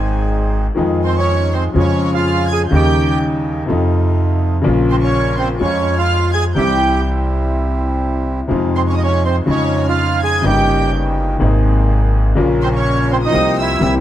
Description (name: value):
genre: tango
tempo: 124 BPM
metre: 4/4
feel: rubato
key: F minor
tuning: A4 = 441 Hz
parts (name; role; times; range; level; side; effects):
- warm studio violin section; second line; 0.0-13.9 s; Ab5 to Ab6; -25 LUFS; left 2 dB; none
- bright upright piano; accompaniment; 0.0-14.0 s; G1 to Ab4; -18 LUFS; left 3 dB; none
- bandoneon; stabs; 0.0-14.0 s; G3 to Bb4; -26 LUFS; right 5 dB; none
- upright bass; bass; 0.0-14.0 s; G1 to F2; -18 LUFS; right 1 dB; none
- bandoneon; melody; 1.1-13.9 s; C4 to Ab5; -19 LUFS; right 4 dB; plate reverb
room: light reverb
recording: dark, warm production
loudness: -13 LUFS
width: side -12 dB against mid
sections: 0.8-14.0 A section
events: none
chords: 0.0 Ab; 0.8 Fm7; 1.8 Db/F; 2.7 Eb7; 3.7 F7; 4.6 Bbm; 5.6 Fm; 6.6 C; 8.5 Fm7; 9.5 Dbadd9/F; 10.4 Eb7/G; 11.4 Abadd9; 12.4 Bbmadd9; 13.3 C7sus4